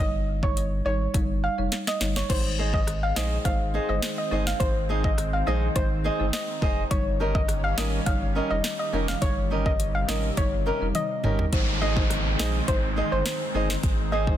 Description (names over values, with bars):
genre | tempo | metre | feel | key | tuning
dancehall | 104 BPM | 4/4 | straight | Ab major | A4 = 442 Hz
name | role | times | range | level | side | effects
soft round pluck | melody | 0.0-14.2 s | C5 to F5 | -30 LUFS | equal | chorus, ping-pong delay
folk marimba with medium mallets | accompaniment | 0.0-14.4 s | G3 to Db5 | -34 LUFS | left 1 dB | none
warm sub bass | bass | 0.0-14.4 s | F1 to Bb1 | -28 LUFS | equal | none
afro-pop drum kit | drums | 0.4-14.4 s | crash cymbal, hi-hat, kick drum, rim click, snare drum, toms | -27 LUFS | equal | none
lush unison pad | sustained chords | 2.3-14.4 s | C3 to Db4 | -35 LUFS | equal | chorus, phaser, sidechain pumping
flamenco guitar | arpeggios | 2.6-14.3 s | Db4 to Eb5 | -31 LUFS | right 1 dB | ping-pong delay
downlifter | sound effects | 11.5-14.4 s | none | -32 LUFS | equal | none
room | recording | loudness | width
light reverb | dense, heavily limited modern master | -23 LUFS | side -11 dB against mid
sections
0.0-2.3 A section; 2.3-11.5 B section; 11.5-14.4 C section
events
drum fill 1.7-2.3, 10.9-11.5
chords
0.0 Eb7; 2.3 Ab; 6.9 Eb7; 11.5 Ab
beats
0.56 1.14 1.72 | 2.30 2.87 3.45 4.03 | 4.60 5.18 5.76 6.33 | 6.91 7.49 8.06 8.64 | 9.22 9.80 10.37 10.95 | 11.53 12.10 12.68 13.26 | 13.83